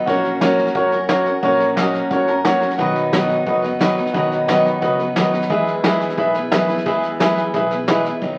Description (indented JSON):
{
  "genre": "honky-tonk and classic country",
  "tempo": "177 BPM",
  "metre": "4/4",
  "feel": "straight",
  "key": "unclear",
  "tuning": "A4 = 439 Hz",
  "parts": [
    { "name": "picked steel-string acoustic guitar", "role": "accompaniment", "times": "0.0-8.4 s", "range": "B2 to B4", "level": "-23 LUFS", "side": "equal", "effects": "none" },
    { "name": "warm concert grand piano", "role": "accompaniment", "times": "0.1-8.2 s", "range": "F#4 to B5", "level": "-21 LUFS", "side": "equal", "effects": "none" },
    { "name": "upright bass", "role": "bass", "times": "0.1-8.4 s", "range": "F#1 to F#2", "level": "-36 LUFS", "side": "equal", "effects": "none" },
    { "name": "vintage brush drum kit", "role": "drums", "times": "0.1-8.3 s", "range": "hi-hat, kick drum, snare drum", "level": "-25 LUFS", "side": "equal", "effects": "none" }
  ],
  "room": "wet large studio reverb, RT60 0.9 s",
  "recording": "very old 78 rpm record, vinyl crackle",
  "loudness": "-18 LUFS",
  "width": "mono",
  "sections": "0.0-8.2 A section",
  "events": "grand piano fill 2.1-2.8, 7.7-8.2",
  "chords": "0.1 F#/A#; 2.8 B; 5.5 E"
}